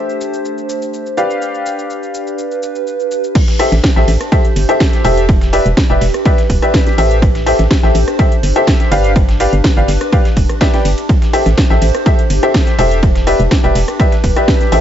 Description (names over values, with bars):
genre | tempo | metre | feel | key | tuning
piano house | 124 BPM | 4/4 | straight | A minor | A4 = 440 Hz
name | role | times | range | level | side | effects
clear upright piano | riff | 0.0-14.8 s | G4 to G5 | -16 LUFS | left 1 dB | sidechain pumping, ping-pong delay
warbly tape-like pad | texture | 0.0-14.8 s | A3 to C5 | -21 LUFS | right 1 dB | chorus, built-in reverb, sidechain pumping
house drum kit | drums | 0.1-14.8 s | crash cymbal, hi-hat, ride cymbal, rim click, shaker, snare drum | -21 LUFS | equal | overdrive
dusty soul sampler-style drum kit | drums | 3.4-14.8 s | hi-hat, ride cymbal, snare drum | -30 LUFS | right 2 dB | high-pass filter on cymbals, high-pass filter on snare, high-pass filter on hats
electronic kick drum | drums | 3.4-14.6 s | none | -12 LUFS | equal | overdrive
organ-like FM bass | bass | 3.7-14.8 s | D1 to A1 | -14 LUFS | equal | tube saturation, sidechain pumping
room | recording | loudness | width
little or no reverb | nothing above 7.8 kHz | -10 LUFS | side -10 dB against mid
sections
0.0-3.4 A section; 3.4-14.8 B section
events
filter sweep on upright piano 0.0-3.4; drop 3.4-14.8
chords
0.0 Am7; 1.2 G7; 3.4 Am7; 5.3 Em7; 7.0 Am7; 8.9 G7; 11.1 Am7; 13.0 Em7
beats
0.45 0.93 | 1.42 1.90 2.38 2.87 | 3.35 3.84 4.32 4.80 | 5.29 5.77 6.25 6.74 | 7.22 7.71 8.19 8.67 | 9.16 9.64 10.13 10.61 | 11.09 11.58 12.06 12.54 | 13.03 13.51 14.00 14.48